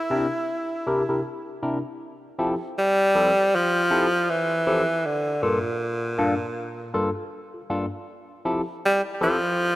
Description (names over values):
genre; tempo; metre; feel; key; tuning
reggae; 79 BPM; 4/4; swing 58% on 16ths; F major; A4 = 439 Hz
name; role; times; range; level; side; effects
clear tenor saxophone; melody; 0.0-9.8 s; Bb2 to E4; -22 LUFS; equal; tape echo
barky tine electric piano; accompaniment; 0.1-9.4 s; G2 to Bb4; -26 LUFS; left 1 dB; tube saturation, phaser
room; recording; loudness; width
moderate lush hall reverb, RT60 2.8 s; rough home demo mix; -21 LUFS; side -16 dB against mid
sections
0.0-2.0 A section; 2.0-9.8 B section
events
none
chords
0.0 C7; 2.0 Fmaj7; 5.0 Gm7; 8.1 Fmaj7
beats
0.48 1.25 | 2.00 2.76 3.52 4.28 | 5.04 5.80 6.56 7.32 | 8.07 8.83 9.59